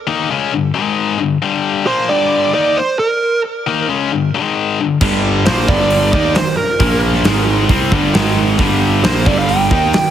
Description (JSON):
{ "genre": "quiet-loud alternative rock", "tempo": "134 BPM", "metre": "4/4", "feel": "straight", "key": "unclear", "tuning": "A4 = 440 Hz", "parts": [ { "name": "tight distorted guitar", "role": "riff", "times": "0.1-9.9 s", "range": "G2 to Eb4", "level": "-17 LUFS", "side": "left 7 dB", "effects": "distortion" }, { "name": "dark smooth lead guitar", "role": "melody", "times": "1.9-10.1 s", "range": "Bb4 to G5", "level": "-17 LUFS", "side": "right 3 dB", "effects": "overdrive, digital delay" }, { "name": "scooped high-gain guitar", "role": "riff", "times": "5.0-9.9 s", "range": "G2 to Eb4", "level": "-23 LUFS", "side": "right 2 dB", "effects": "distortion" }, { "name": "thick fuzz guitar", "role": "riff", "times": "5.0-9.9 s", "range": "G2 to Eb4", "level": "-20 LUFS", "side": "right 12 dB", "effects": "distortion" }, { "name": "fuzz picked electric bass", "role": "bass", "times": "5.0-9.9 s", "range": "G1 to Eb2", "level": "-17 LUFS", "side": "equal", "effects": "overdrive" }, { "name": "huge arena drum kit", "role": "drums", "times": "5.0-10.0 s", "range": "crash cymbal, hi-hat, kick drum, snare drum", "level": "-17 LUFS", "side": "equal", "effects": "none" } ], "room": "light reverb, studio reverb", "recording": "heavily compressed radio sound", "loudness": "-12 LUFS", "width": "side -10 dB against mid", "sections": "0.0-10.1 A section", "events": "none", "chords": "0.0 Gm; 0.7 Ab5; 1.2 Gm; 4.3 Ab5; 4.8 Gm; 6.8 Bb5; 7.3 Ab5; 7.7 G5; 8.1 Ab5; 8.6 Gm" }